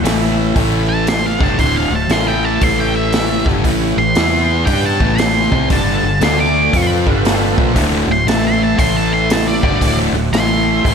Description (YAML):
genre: blues rock power trio and southern rock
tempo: 117 BPM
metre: 4/4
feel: swing 65% on 8ths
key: unclear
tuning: A4 = 442 Hz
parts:
  - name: overdriven tonewheel organ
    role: sustained chords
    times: 0.0-10.9 s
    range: B3 to F5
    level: -25 LUFS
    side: right 4 dB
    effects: chorus vibrato, slow rotary speaker
  - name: fuzz guitar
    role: riff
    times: 0.0-10.9 s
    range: D2 to G4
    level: -16 LUFS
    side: left 1 dB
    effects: distortion, slapback echo
  - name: vintage muted fingered electric bass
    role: bass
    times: 0.0-10.9 s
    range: D1 to G2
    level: -20 LUFS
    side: equal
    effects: none
  - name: vintage drum kit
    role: drums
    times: 0.1-10.9 s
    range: hi-hat, kick drum, snare drum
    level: -18 LUFS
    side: equal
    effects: none
  - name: octave-fuzz lead guitar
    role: melody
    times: 0.9-10.9 s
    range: D5 to D6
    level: -19 LUFS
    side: right 1 dB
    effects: distortion
room: moderate lush hall reverb, RT60 1.7 s, small room reverb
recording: big arena sound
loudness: -12 LUFS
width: side -6 dB against mid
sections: 0.0-10.9 A section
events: lead electric guitar solo 0.0-10.9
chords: 0.0 A5; 1.3 D7; 2.1 A5; 3.4 G5; 3.6 A7; 4.2 E5; 4.7 A7; 5.7 G7; 6.2 D5; 6.7 G7; 7.8 D7; 8.3 A5; 9.6 D7; 10.3 A5